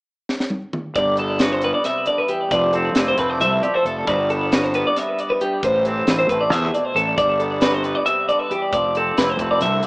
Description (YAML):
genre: math rock and midwest emo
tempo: 270 BPM (eighths)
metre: 7/8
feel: straight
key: G major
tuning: A4 = 440 Hz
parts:
  - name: crisp fusion drum kit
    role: drums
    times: 0.3-9.9 s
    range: hi-hat, kick drum, snare drum, toms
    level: -23 LUFS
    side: equal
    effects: none
  - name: twangy electric guitar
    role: accompaniment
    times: 1.0-9.9 s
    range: G2 to B4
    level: -26 LUFS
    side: right 1 dB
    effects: none
  - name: twelve-string electric guitar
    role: arpeggios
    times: 1.0-9.9 s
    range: G4 to E5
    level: -19 LUFS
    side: equal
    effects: tape echo
  - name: fuzz fingered electric bass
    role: bass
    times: 1.0-9.8 s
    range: F1 to E2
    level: -24 LUFS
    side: equal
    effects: overdrive
room: light reverb, studio reverb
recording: rough home demo mix, small speaker sound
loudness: -17 LUFS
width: side -30 dB against mid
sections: 1.0-9.9 A section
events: drum fill 0.3-1.0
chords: 0.0 N.C.; 1.0 Gmaj7; 2.5 Fmaj7; 4.1 Gmaj7; 5.6 Am7; 7.2 Gmaj7; 8.7 Fmaj7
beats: 0.07 0.30 0.52 0.74 | 0.96 1.19 1.41 1.63 1.85 2.08 2.30 | 2.52 2.75 2.97 3.19 3.41 3.63 3.86 | 4.08 4.30 4.52 4.75 4.97 5.19 5.41 | 5.63 5.86 6.08 6.30 6.52 6.75 6.97 | 7.19 7.41 7.63 7.85 8.08 8.30 8.52 | 8.74 8.96 9.19 9.41 9.63 9.85